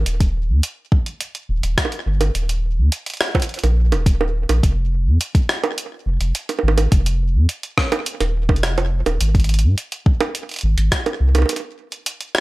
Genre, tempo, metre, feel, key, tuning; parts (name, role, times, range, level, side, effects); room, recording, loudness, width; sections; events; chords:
IDM; 105 BPM; 4/4; straight; A4 = 440 Hz
warm sub bass; bass; 0.0-11.4 s; Eb1 to Ab2; -17 LUFS; equal
jungle sampler-style drum kit; drums; 0.1-12.4 s; bongos, hi-hat, rim click; -22 LUFS; right 3 dB; studio reverb, digital delay
electronic kick drum; drums; 0.2-11.0 s; -16 LUFS; equal; studio reverb
little or no reverb; -17 LUFS; side -20 dB against mid
0.0-12.4 A section
break 11.5-12.4